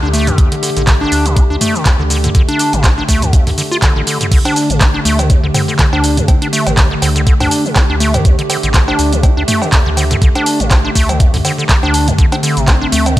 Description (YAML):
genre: acid house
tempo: 122 BPM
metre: 4/4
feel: swing 56% on 16ths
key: unclear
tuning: A4 = 441 Hz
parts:
  - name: warbly tape-like pad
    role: sustained chords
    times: 0.0-13.2 s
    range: D3 to G4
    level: -20 LUFS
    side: equal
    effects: chorus, built-in reverb, sidechain pumping
  - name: acid bass, square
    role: riff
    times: 0.0-13.2 s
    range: D2 to F4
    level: -16 LUFS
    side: equal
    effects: overdrive, tape echo
  - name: round analog bass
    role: bass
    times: 0.0-13.2 s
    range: A1 to D2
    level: -17 LUFS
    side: equal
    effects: sidechain pumping
  - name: punchy analog drum machine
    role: drums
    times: 0.1-13.2 s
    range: cowbell, crash cymbal, handclaps, hi-hat, shaker, toms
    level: -17 LUFS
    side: right 1 dB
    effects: none
  - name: electronic kick drum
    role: drums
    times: 0.4-13.2 s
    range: none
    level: -11 LUFS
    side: equal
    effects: none
room: little or no reverb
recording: none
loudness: -10 LUFS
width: side -15 dB against mid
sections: 0.0-13.2 A section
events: none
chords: 0.0 D5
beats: | 0.38 0.87 1.36 1.86 | 2.35 2.84 3.33 3.82 | 4.32 4.81 5.30 5.79 | 6.28 6.78 7.27 7.76 | 8.25 8.74 9.23 9.73 | 10.22 10.71 11.20 11.69 | 12.19 12.68 13.17